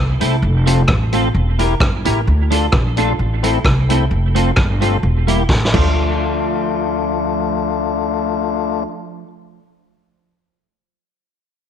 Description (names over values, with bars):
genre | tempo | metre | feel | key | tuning
ska | 130 BPM | 4/4 | swing 54% on 8ths | D minor | A4 = 440 Hz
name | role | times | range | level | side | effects
upright bass | bass | 0.0-8.8 s | E1 to D2 | -17 LUFS | equal | none
clean electric guitar | accompaniment | 0.2-9.3 s | F3 to Bb4 | -23 LUFS | right 11 dB | analog chorus, tape echo
tonewheel organ | stabs | 0.2-8.8 s | A3 to Bb4 | -21 LUFS | left 10 dB | overdrive, stopped rotary speaker
street-band drum kit | drums | 0.2-5.8 s | crash cymbal, hi-hat, kick drum, rim click, snare drum | -18 LUFS | equal | none
room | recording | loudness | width
light reverb, small room reverb | 1960s-style stereo with parts hard left and right | -14 LUFS | side -8 dB against mid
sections
0.0-6.0 A section; 6.0-9.6 B section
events
drum fill 5.5-6.0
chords
0.4 F; 1.3 Edim; 2.3 Dm; 3.2 Am; 4.1 F; 5.0 Edim; 5.7 Dm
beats
| 0.42 0.89 1.35 1.81 | 2.27 2.73 3.19 3.65 | 4.11 4.57 5.03 5.49 | 5.95 6.41 6.87 7.33 | 7.79 8.26 8.72 9.18